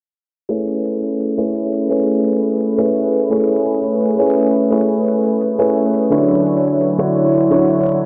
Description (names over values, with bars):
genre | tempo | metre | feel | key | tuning
liquid drum and bass | 171 BPM | 4/4 | straight | A major | A4 = 440 Hz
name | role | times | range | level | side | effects
warm concert grand piano | accompaniment | 0.5-8.1 s | D3 to C#5 | -19 LUFS | equal | low-pass filter, diffuse ambient delay
warm analog pad | sustained chords | 0.5-8.1 s | F#3 to C#5 | -20 LUFS | equal | chorus
electronic hi-hat | drums | 0.5-7.9 s | none | -50 LUFS | equal | small room ambience
room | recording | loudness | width
wet huge ambient reverb, RT60 7.9 s | dreamy mix soaked in reverb, low-pass filter | -16 LUFS | mono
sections
0.5-8.1 A section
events
filter sweep on grand piano 0.5-8.1; filter sweep 0.5-8.1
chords
0.5 Amaj9; 6.1 Dmaj9